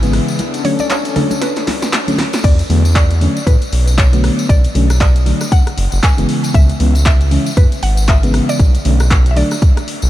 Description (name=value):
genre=deep house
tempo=117 BPM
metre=4/4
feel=swing 59% on 16ths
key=B dorian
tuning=A4 = 440 Hz
part: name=mallet-like synth pluck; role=melody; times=0.0-10.1 s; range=A4 to G#5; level=-24 LUFS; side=equal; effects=chorus, tape echo
part: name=warm analog pad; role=sustained chords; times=0.0-2.4 s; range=B3 to A4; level=-24 LUFS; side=left 4 dB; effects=wide subtle chorus, sidechain pumping
part: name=mellow FM electric piano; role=stabs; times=0.0-9.5 s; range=C#3 to D4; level=-19 LUFS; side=left 1 dB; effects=chorus, sidechain pumping, tape echo
part: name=round analog bass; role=bass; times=0.0-10.1 s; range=F#1 to A2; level=-13 LUFS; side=equal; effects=sidechain pumping
part: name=punchy analog drum machine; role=drums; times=0.0-10.0 s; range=crash cymbal, handclaps, hi-hat, rim click, snare drum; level=-22 LUFS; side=equal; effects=overdrive
part: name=congas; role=percussion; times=0.0-2.3 s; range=none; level=-25 LUFS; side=right 2 dB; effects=none
part: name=tambourine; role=percussion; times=0.0-10.1 s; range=none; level=-28 LUFS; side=left 4 dB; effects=none
part: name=electronic kick drum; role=drums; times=2.4-9.7 s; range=none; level=-11 LUFS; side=equal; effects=overdrive
room=light reverb, digital ambience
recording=none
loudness=-11 LUFS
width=side -14 dB against mid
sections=0.0-2.4 A section; 2.4-10.1 B section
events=drum fill 1.4-2.4; drop 2.4-10.1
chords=0.4 Bm7; 2.4 E7sus4; 4.5 Bm7; 6.3 C#m7; 8.6 Bm7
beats=| 0.39 0.90 1.42 1.93 | 2.44 2.95 3.47 3.98 | 4.49 5.01 5.52 6.03 | 6.54 7.06 7.57 8.08 | 8.60 9.11 9.62